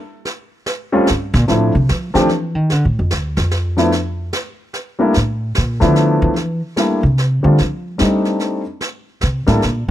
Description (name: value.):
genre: jazz piano trio.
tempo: 147 BPM.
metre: 3/4.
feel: swing 64% on 8ths.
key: C mixolydian.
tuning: A4 = 444 Hz.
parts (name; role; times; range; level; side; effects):
brushed snare drum and snare drum; drums; 0.3-9.9 s; none; -24 LUFS; right 2 dB; none.
warm grand piano; melody; 0.9-9.6 s; F3 to A4; -16 LUFS; left 1 dB; none.
upright bass; bass; 1.1-9.9 s; D2 to G3; -16 LUFS; equal; none.
room: little or no reverb.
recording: dry, close 1970s-style studio recording.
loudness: -14 LUFS.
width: side -12 dB against mid.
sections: 0.0-6.4 A section; 6.4-9.9 A section.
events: upright bass solo 0.0-9.9.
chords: 0.3 N.C.; 1.1 Gm; 1.5 Dm; 3.9 N.C.; 5.1 Bbmaj7/A; 6.0 Dm69; 6.4 C69; 7.6 F13; 8.8 C7(no3).